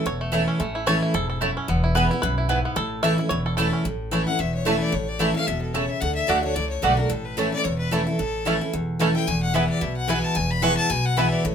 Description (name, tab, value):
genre	bluegrass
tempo	221 BPM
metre	4/4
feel	swing 56% on 8ths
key	A major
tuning	A4 = 440 Hz
part	bluegrass banjo	melody	0.0-3.9, 8.5-11.2 s	A3 to E5	-27 LUFS	right 1 dB	none
part	picked steel-string acoustic guitar	accompaniment	0.0-11.5 s	E2 to F#4	-24 LUFS	equal	none
part	upright bass	bass	0.1-11.5 s	E1 to D2	-28 LUFS	equal	none
part	mandolin	stabs	0.3-11.3 s	A3 to A5	-24 LUFS	right 3 dB	none
part	clear fiddle	second line	4.3-11.5 s	A4 to C#6	-27 LUFS	left 5 dB	none
room	moderate studio reverb, RT60 0.5 s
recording	minimal, uncompressed stereo recording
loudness	-20 LUFS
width	side -8 dB against mid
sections	0.0-3.9 A section; 3.9-11.5 A section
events	five-string banjo solo 0.0-3.9; fiddle solo 3.9-11.5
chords	0.0 A; 1.7 E; 2.8 A; 6.0 D; 7.1 A; 9.3 E